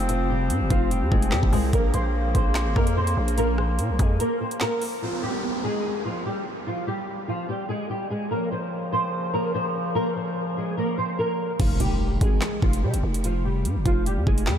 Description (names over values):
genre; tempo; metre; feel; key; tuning
hip hop, drill; 146 BPM; 4/4; half-time; F minor; A4 = 439 Hz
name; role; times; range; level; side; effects
warm woodwind section; sustained chords; 0.0-5.0, 8.3-11.6 s; Bb2 to C4; -31 LUFS; left 1 dB; none
growling 808-style bass; bass; 0.0-4.2, 11.6-14.6 s; F1 to C3; -24 LUFS; equal; none
flamenco guitar; melody; 0.1-14.6 s; F3 to C5; -27 LUFS; equal; ensemble chorus, low-pass filter, tape echo
drill drum kit; drums; 0.1-4.9, 11.6-14.6 s; crash cymbal, handclaps, hi-hat, kick drum, rim click, snare drum; -25 LUFS; equal; overdrive
downlifter and impact; sound effects; 5.0-8.3, 11.6-13.2 s; none; -33 LUFS; right 1 dB; none
room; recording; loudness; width
moderate huge ambient reverb, RT60 7.4 s; dreamy mix soaked in reverb; -22 LUFS; side -9 dB against mid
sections
0.0-5.0 A section; 5.0-11.6 B section; 11.6-14.6 A section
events
break 4.2-5.0; impact 11.6-13.2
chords
0.0 Fmadd9; 1.7 Bbm; 5.0 Fmadd9; 8.3 Bbm; 11.6 Fmadd9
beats
| 0.09 0.50 0.91 1.32 | 1.73 2.14 2.56 2.97 | 3.38 3.79 4.20 4.61 | 5.02 5.43 5.84 6.25 | 6.67 7.08 7.49 7.90 | 8.31 8.72 9.13 9.54 | 9.95 10.36 10.77 11.19 | 11.60 12.01 12.42 12.83 | 13.24 13.65 14.06 14.47